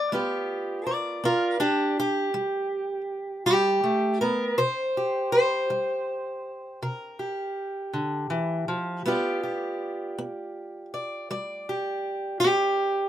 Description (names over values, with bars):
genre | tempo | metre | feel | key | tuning
acoustic country blues, solo or duo | 54 BPM (dotted quarters) | 12/8 | straight | G mixolydian | A4 = 440 Hz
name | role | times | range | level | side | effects
fingerpicked steel-string acoustic guitar | solo | 0.0-13.1 s | C3 to D5 | -24 LUFS | equal | none
room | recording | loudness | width
moderate booth ambience, RT60 0.2 s | minimal, uncompressed stereo recording | -24 LUFS | side -11 dB against mid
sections
0.1-13.1 A section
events
none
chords
0.1 G7; 4.6 C7(no3); 9.0 G7